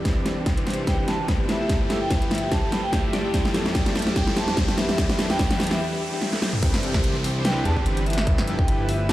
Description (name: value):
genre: future bass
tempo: 146 BPM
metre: 4/4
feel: swing 55% on 16ths, half-time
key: C major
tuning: A4 = 441 Hz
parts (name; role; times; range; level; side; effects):
- glassy digital keys; accompaniment; 0.0-6.8 s; E3 to B4; -32 LUFS; left 2 dB; chorus, sidechain pumping
- airy breathy pad; sustained chords; 0.0-9.1 s; E2 to E6; -38 LUFS; equal; none
- soft supersaw; riff; 0.0-9.1 s; E3 to E5; -29 LUFS; equal; sidechain pumping, low-pass filter
- riser and downlifter; sound effects; 0.0-9.1 s; none; -34 LUFS; equal; none
- dubstep drum kit; drums; 0.1-9.1 s; crash cymbal, hi-hat, snare drum, toms; -26 LUFS; equal; none
- electronic kick drum; drums; 0.1-8.7 s; none; -24 LUFS; equal; none
- vibraphone with hard mallets; melody; 0.9-9.1 s; D5 to A5; -31 LUFS; equal; sidechain pumping, digital delay
- fat analog bass; bass; 6.6-9.1 s; G1 to E2; -25 LUFS; equal; sidechain pumping
room: light reverb, digital ambience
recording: played on a big sound system in a bare room, stone room reverb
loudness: -20 LUFS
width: side -15 dB against mid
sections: 0.0-6.6 A section; 6.6-9.1 B section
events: build-up 0.0-6.6; drum fill 0.0-5.8, 6.2-6.6; riser 0.0-6.6; filter sweep on supersaw synth 0.0-6.6; break 5.8-6.6; drop 6.6-9.1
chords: 0.1 Cmaj9; 1.5 G13; 3.1 Fmaj9; 5.0 Em7; 6.6 Cmaj9; 8.1 G13